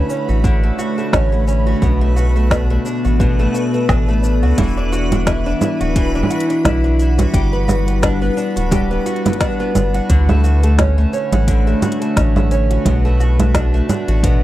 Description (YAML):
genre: folktronica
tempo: 87 BPM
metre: 4/4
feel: swing 56% on 16ths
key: G lydian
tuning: A4 = 436 Hz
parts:
  - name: warbly tape-like pad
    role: sustained chords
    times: 0.0-14.4 s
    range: B2 to F#5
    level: -23 LUFS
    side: equal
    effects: chorus, built-in reverb
  - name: fingerpicked twelve-string acoustic guitar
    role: arpeggios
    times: 0.0-14.4 s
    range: B2 to F#4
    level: -20 LUFS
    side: equal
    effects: tape echo
  - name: round analog bass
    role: bass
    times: 0.0-14.4 s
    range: D1 to D2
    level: -15 LUFS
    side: equal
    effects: none
  - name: backwards swelling texture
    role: texture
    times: 0.0-14.4 s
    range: B4 to B5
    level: -30 LUFS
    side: left 1 dB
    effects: built-in reverb
  - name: organic electronic drum kit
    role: drums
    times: 0.1-14.4 s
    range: congas, hi-hat, shaker, snare drum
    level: -19 LUFS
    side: right 2 dB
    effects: overdrive, small room ambience
  - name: electronic kick drum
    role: drums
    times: 0.4-14.4 s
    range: none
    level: -20 LUFS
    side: equal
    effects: overdrive, small room ambience
room: light reverb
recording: dry, close 1970s-style studio recording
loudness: -13 LUFS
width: side -15 dB against mid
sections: 0.0-14.4 A section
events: none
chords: 0.0 Dmaj7; 1.8 Bm7; 4.6 Esus2; 7.3 Gmaj7; 10.1 Dmaj7; 12.9 Bm7